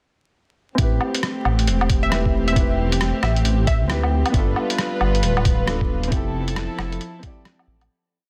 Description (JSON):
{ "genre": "future garage", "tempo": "135 BPM", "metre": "4/4", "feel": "swing 62% on 16ths", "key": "A minor", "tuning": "A4 = 440 Hz", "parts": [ { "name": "felt-muted upright piano", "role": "accompaniment", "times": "0.7-7.9 s", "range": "B3 to D5", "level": "-30 LUFS", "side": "equal", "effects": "sidechain pumping, low-pass filter, tape echo" }, { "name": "warm studio string section", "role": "sustained chords", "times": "0.8-7.9 s", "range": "F3 to B4", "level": "-29 LUFS", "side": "equal", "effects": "sidechain pumping" }, { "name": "dark detuned saw bass", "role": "bass", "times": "0.8-7.9 s", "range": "D1 to D2", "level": "-24 LUFS", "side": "equal", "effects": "sidechain pumping" }, { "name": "electronic kick drum", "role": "drums", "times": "0.8-7.3 s", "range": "none", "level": "-23 LUFS", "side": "equal", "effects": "overdrive, studio reverb" }, { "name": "lo-fi sampler-style drum kit", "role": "drums", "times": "0.8-7.9 s", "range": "hi-hat, rim click, woodblock", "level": "-28 LUFS", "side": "equal", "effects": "overdrive, studio reverb" }, { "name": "glassy wavetable pluck", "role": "melody", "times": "2.0-4.0 s", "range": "E5", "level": "-31 LUFS", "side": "equal", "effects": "chorus, analog delay" } ], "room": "little or no reverb", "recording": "dense, heavily limited modern master, vinyl crackle", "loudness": "-20 LUFS", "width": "mono", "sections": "0.8-7.9 groove", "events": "filter sweep on felt piano 0.8-7.9; fade-out 5.5-7.9", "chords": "0.8 Am7; 4.3 G7; 6.1 Fmaj7", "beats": "| 0.79 1.23 1.67 2.12 | 2.56 3.01 3.45 3.90 | 4.34 4.79 5.23 5.67 | 6.12 6.56 7.01 7.45" }